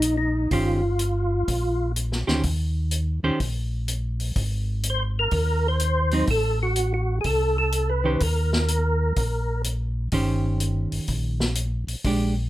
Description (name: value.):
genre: soul jazz organ trio.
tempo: 125 BPM.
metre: 4/4.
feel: swing 67% on 8ths.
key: Eb mixolydian.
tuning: A4 = 440 Hz.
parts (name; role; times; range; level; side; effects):
percussive tonewheel organ; melody; 0.0-1.9, 4.9-9.6 s; Eb4 to C5; -25 LUFS; equal; slow rotary speaker, chorus vibrato, plate reverb.
mellow tonewheel organ; bass; 0.0-12.5 s; G1 to Eb2; -24 LUFS; equal; overdrive, chorus vibrato, slow rotary speaker.
vintage drum kit; drums; 0.0-12.2 s; hi-hat, kick drum, snare drum; -29 LUFS; left 1 dB; none.
hollow-body jazz guitar; accompaniment; 0.5-12.3 s; Eb3 to C5; -25 LUFS; right 2 dB; none.
room: light reverb.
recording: none.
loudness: -22 LUFS.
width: side -15 dB against mid.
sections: 0.0-12.5 A section.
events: none.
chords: 0.0 Eb13; 4.4 Abadd9; 6.3 Am; 8.2 Eb6.